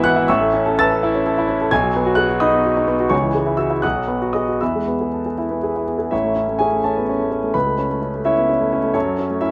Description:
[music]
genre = classical, virtuoso piano study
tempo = 77-88 BPM (dotted quarters)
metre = 6/8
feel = rubato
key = E major, A major from 6.1 s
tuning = A4 = 439 Hz
[part]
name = warm concert grand piano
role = solo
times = 0.0-9.5 s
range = G#1 to B6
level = -19 LUFS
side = equal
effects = none
[sound]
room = light reverb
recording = none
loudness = -19 LUFS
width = mono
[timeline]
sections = 0.0-6.1 A section; 6.1-9.5 B section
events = none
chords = 0.3 A; 1.7 B; 3.1 C#m; 3.8 B; 4.6 E; 6.1 A; 7.5 A/C#; 8.9 F#m

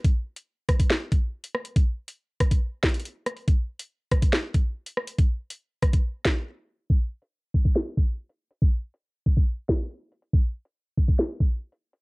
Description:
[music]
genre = hip hop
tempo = 140 BPM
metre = 4/4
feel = half-time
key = none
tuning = none
[part]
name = drill drum kit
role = drums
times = 0.0-12.0 s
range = hi-hat, kick drum, rim click, snare drum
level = -21 LUFS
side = equal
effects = cassette tape
[sound]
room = little or no reverb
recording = home recording on cassette, low-pass filter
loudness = -23 LUFS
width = side -30 dB against mid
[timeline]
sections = 0.0-6.9 A section; 6.9-12.0 B section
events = break 6.5-6.9; filter sweep 6.9-12.0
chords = none

